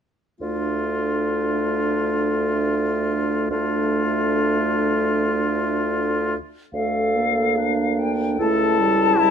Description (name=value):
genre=classical, slow romantic movement for wind quintet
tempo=65-81 BPM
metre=4/4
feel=rubato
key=D minor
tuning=A4 = 441 Hz
part: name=warm oboe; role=second line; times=0.4-9.3 s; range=E4 to A4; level=-24 LUFS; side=left 3 dB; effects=none
part: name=mellow French horn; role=accompaniment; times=0.4-9.3 s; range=G3 to Bb3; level=-26 LUFS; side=left 2 dB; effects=none
part: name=mellow clarinet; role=accompaniment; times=0.4-9.3 s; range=D4 to A4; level=-26 LUFS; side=right 6 dB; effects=none
part: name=dark bassoon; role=bass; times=0.4-9.3 s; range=C#2 to D2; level=-25 LUFS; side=right 1 dB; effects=none
part: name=silver concert flute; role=melody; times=6.7-9.3 s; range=F5 to A5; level=-22 LUFS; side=left 6 dB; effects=none
room=light reverb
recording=minimal, uncompressed stereo recording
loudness=-19 LUFS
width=side -7 dB against mid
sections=0.4-6.7 A section; 6.7-9.3 B section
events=none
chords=0.4 Dm; 8.4 A7/C#